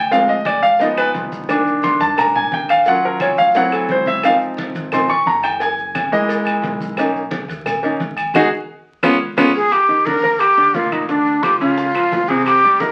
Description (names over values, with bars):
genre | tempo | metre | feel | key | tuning
Afro-Cuban jazz | 175 BPM | 4/4 | straight | unclear | A4 = 440 Hz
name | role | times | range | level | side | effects
clear grand piano | accompaniment | 0.0-12.9 s | Bb2 to Db6 | -18 LUFS | equal | none
upright bass | bass | 0.0-12.9 s | Gb1 to G2 | -36 LUFS | equal | none
agogo bells and timbales | percussion | 0.1-12.9 s | none | -27 LUFS | equal | none
congas | percussion | 0.1-12.9 s | none | -34 LUFS | equal | none
cowbell and bongos | percussion | 0.1-12.9 s | none | -32 LUFS | equal | none
maracas | percussion | 0.1-12.9 s | none | -47 LUFS | equal | none
claves | percussion | 0.5-12.6 s | none | -31 LUFS | equal | none
breathy hollow jazz flute | melody | 9.5-12.9 s | D4 to Bb4 | -16 LUFS | equal | none
room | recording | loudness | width
wet studio reverb, RT60 0.7 s | very old 78 rpm record, vinyl crackle | -16 LUFS | mono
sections
0.0-9.7 A section; 9.7-12.9 B section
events
grand piano solo 0.0-9.7; band accent 8.3-9.7; drum fill 8.9-9.7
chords
0.1 Dm7b5; 0.8 Db9; 1.5 Cm7; 2.9 Ebm9; 3.6 D9; 4.2 Dbmaj9; 5.6 Gb7; 7.0 Bmaj7; 8.3 Ab5; 9.0 Db7; 9.7 Ebmaj7; 11.1 Dmmaj7; 11.8 Db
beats
| 0.12 0.46 0.80 1.15 | 1.49 1.83 2.18 2.52 | 2.86 3.21 3.55 3.89 | 4.24 4.58 4.92 5.27 | 5.61 5.95 6.29 6.64 | 6.98 7.32 7.67 8.01 | 8.35 8.69 9.03 9.38 | 9.72 10.06 10.40 10.75 | 11.09 11.43 11.78 12.12 | 12.46 12.80